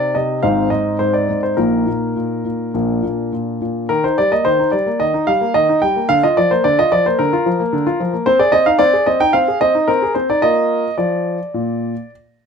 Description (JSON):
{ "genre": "classical-period piano sonatina", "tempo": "102-113 BPM", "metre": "4/4", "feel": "rubato", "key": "Eb major", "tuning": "A4 = 440 Hz", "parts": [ { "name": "clear concert grand piano", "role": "solo", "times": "0.0-12.1 s", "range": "Ab1 to G5", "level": "-14 LUFS", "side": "equal", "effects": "none" } ], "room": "light reverb", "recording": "close, detailed microphones", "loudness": "-14 LUFS", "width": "side -6 dB against mid", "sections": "0.0-3.9 A section; 3.9-12.5 B section", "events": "none", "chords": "0.4 Ab; 1.6 Bbsus4; 2.7 Bb; 3.9 Eb; 6.1 Bb/D; 8.3 Ab/C; 10.4 Bb", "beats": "0.43 1.00 | 1.58 2.17 2.75 3.33 | 3.90 4.45 5.00 5.55 | 6.10 6.64 7.18 7.72 | 8.26 8.79 9.33 9.87 | 10.42 10.98 11.54" }